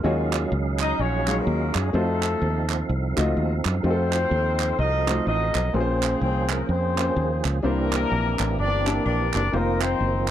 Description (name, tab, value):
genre	uptempo gospel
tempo	126 BPM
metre	4/4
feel	swing 60% on 8ths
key	unclear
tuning	A4 = 440 Hz
part	warm upright piano	accompaniment	0.0-10.0 s	Bb2 to A5	-27 LUFS	left 2 dB	none
part	tonewheel organ	sustained chords	0.0-10.3 s	Eb3 to F5	-30 LUFS	right 6 dB	fast rotary speaker, chorus vibrato
part	fingered electric bass	bass	0.0-10.3 s	F1 to Gb2	-25 LUFS	equal	none
part	group handclap	percussion	0.3-10.3 s	none	-30 LUFS	right 12 dB	none
part	dark horn section	melody	0.8-10.3 s	Ab3 to Eb5	-26 LUFS	left 3 dB	none
room	little or no reverb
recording	dry, close 1970s-style studio recording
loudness	-21 LUFS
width	side -11 dB against mid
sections	0.0-10.3 A section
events	none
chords	0.0 Ebm11; 1.9 F7b9; 5.7 Bbm9; 7.6 C9; 9.5 F7sus4